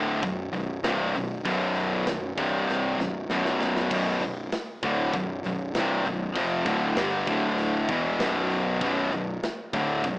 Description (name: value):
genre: heavy metal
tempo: 98 BPM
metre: 4/4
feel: straight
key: unclear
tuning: A4 = 439 Hz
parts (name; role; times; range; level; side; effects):
- high-gain distorted guitar; riff; 0.0-10.2 s; B1 to G3; -26 LUFS; left 1 dB; distortion
- sludgy distorted guitar; riff; 0.0-10.2 s; B1 to G3; -34 LUFS; right 2 dB; overdrive
- fuzz picked electric bass; bass; 0.0-10.2 s; B0 to G1; -34 LUFS; equal; overdrive
- tight metal drum kit; drums; 0.2-10.2 s; crash cymbal, hi-hat, kick drum, snare drum; -34 LUFS; equal; none
room: light reverb, small room ambience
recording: rough home demo mix, small speaker sound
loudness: -24 LUFS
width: side -24 dB against mid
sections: 0.0-10.2 A section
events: drum fill 2.7-3.9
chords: 0.0 Bm; 2.4 C5; 3.0 Bm; 7.3 D5; 7.9 Bm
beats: 0.23 0.85 | 1.46 2.07 2.69 3.30 | 3.91 4.52 5.14 5.75 | 6.36 6.97 7.58 8.20 | 8.81 9.42 10.03